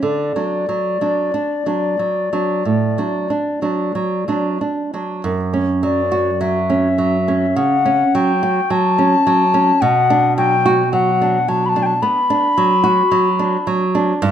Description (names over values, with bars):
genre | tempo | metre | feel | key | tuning
romantic duo for flute and classical guitar | 45-55 BPM | 4/4 | rubato | unclear | A4 = 440 Hz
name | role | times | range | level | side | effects
wooden flute | melody | 0.0-13.7 s | D5 to B5 | -17 LUFS | left 4 dB | none
nylon-string guitar | accompaniment | 0.0-14.3 s | F#2 to F#4 | -17 LUFS | right 3 dB | none
room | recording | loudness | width
moderate recital hall reverb, RT60 1.5 s | minimal, uncompressed stereo recording | -14 LUFS | side -9 dB against mid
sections
0.0-5.2 A section; 5.2-14.3 B section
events
none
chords
0.0 D; 5.2 F#m; 9.8 Bm